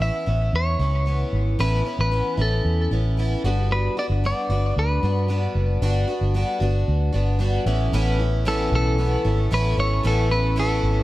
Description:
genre	acoustic pop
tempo	114 BPM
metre	4/4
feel	straight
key	A major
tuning	A4 = 438 Hz
part	clean electric guitar	melody	0.0-11.0 s	A4 to E5	-26 LUFS	equal	tape echo
part	picked plugged-in twelve-string acoustic guitar	accompaniment	0.0-11.0 s	A2 to F#4	-26 LUFS	left 1 dB	none
part	vintage muted fingered electric bass	bass	0.0-11.0 s	F#1 to G2	-21 LUFS	equal	none
part	warm analog pad	sustained chords	7.9-11.0 s	A4 to C#6	-37 LUFS	right 1 dB	none
room	digital ambience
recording	dark, warm production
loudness	-19 LUFS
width	side -16 dB against mid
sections	0.0-7.9 A section; 7.9-11.0 B section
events	none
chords	0.0 Aadd9; 3.4 Gmaj7; 7.7 Aadd9

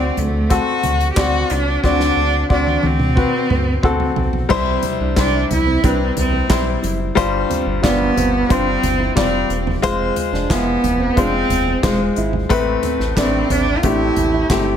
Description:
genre	piano-driven pop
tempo	90 BPM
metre	4/4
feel	straight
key	C major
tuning	A4 = 435 Hz
part	clear cello	melody	0.0-14.8 s	Ab3 to G4	-20 LUFS	right 2 dB	none
part	clear baby grand piano	accompaniment	0.0-14.8 s	G2 to D5	-20 LUFS	left 5 dB	none
part	round analog bass	bass	0.0-14.8 s	E1 to D2	-22 LUFS	right 1 dB	none
part	unplugged drum kit	drums	0.2-14.7 s	crash cymbal, handclaps, hi-hat, kick drum, snare drum, toms	-22 LUFS	right 1 dB	none
part	fingerpicked steel-string acoustic guitar	riff	4.5-14.5 s	C4 to E4	-26 LUFS	right 6 dB	none
room	light reverb, small room ambience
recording	none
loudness	-15 LUFS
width	side -8 dB against mid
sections	0.0-4.5 A section; 4.5-14.8 B section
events	drum fill 1.8-4.5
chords	0.0 D7; 4.5 C; 7.2 G7sus4; 9.8 Fm; 12.5 Amadd9

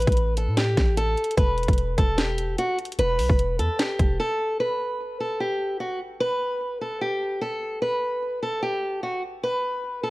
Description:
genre	hip hop, trap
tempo	149 BPM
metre	4/4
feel	half-time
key	unclear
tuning	A4 = 441 Hz
part	fingerpicked old ladder-braced acoustic guitar	melody	0.0-10.1 s	F#4 to B4	-25 LUFS	equal	none
part	hard-hitting 808-style bass	bass	0.0-4.2 s	E1 to A2	-25 LUFS	equal	none
part	trap drum kit	drums	0.0-4.1 s	hi-hat, kick drum, snare drum	-22 LUFS	equal	none
room	light reverb, digital ambience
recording	worn, warbling old tape, cassette tape, warbly pitch drift, faint mains hum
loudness	-22 LUFS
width	side -20 dB against mid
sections	0.0-4.6 A section; 4.6-10.1 B section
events	break 4.2-4.6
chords	0.0 Asus2; 1.4 Em; 4.6 N.C.

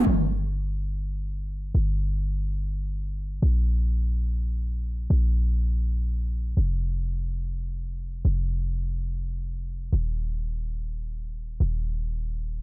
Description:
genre	future bass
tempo	free time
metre	none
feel	none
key	unclear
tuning	A4 = 440 Hz
part	warm 808-style bass	bass	0.0-12.6 s	Eb1 to Bb1	-25 LUFS	equal	tube saturation
room	little or no reverb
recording	none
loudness	-25 LUFS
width	side -19 dB against mid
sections	0.1-12.6 A section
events	none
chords	none

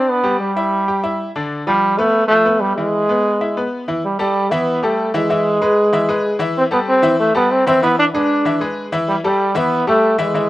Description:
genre	latin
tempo	190 BPM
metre	4/4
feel	straight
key	A minor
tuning	A4 = 440 Hz
part	clear trombone	melody	0.0-10.5 s	G3 to D4	-15 LUFS	right 1 dB	slapback echo
part	bright concert grand piano	accompaniment	0.0-10.5 s	D3 to G5	-20 LUFS	left 2 dB	none
room	little or no reverb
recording	recorded outdoors, with no room sound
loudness	-14 LUFS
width	side -16 dB against mid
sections	0.0-4.0 A section; 4.0-10.5 B section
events	none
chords	0.2 Em; 1.5 Bdim; 2.8 E; 4.0 A5; 5.3 E; 6.6 Am7; 7.8 E7; 9.1 A5

